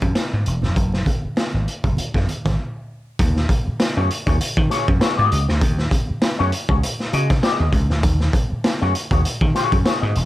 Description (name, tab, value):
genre	funk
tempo	99 BPM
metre	4/4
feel	swing 56% on 16ths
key	Eb minor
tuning	A4 = 440 Hz
part	vintage slap bass	bass	0.0-10.3 s	Fb1 to Eb3	-20 LUFS	equal	none
part	raw garage drum kit	drums	0.0-10.3 s	hi-hat, kick drum, snare drum	-20 LUFS	equal	none
part	congas	percussion	0.0-2.6 s	none	-29 LUFS	right 3 dB	none
part	electric guitar with an envelope filter	accompaniment	4.0-10.1 s	Gb4 to Eb5	-23 LUFS	left 4 dB	analog chorus, plate reverb
room	little or no reverb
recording	dark, warm production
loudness	-17 LUFS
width	side -15 dB against mid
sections	0.0-3.2 A section; 3.2-10.3 B section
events	break 2.6-3.2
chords	0.0 Ebmadd9 (rootless); 0.8 Gbsus2; 3.2 Ebm11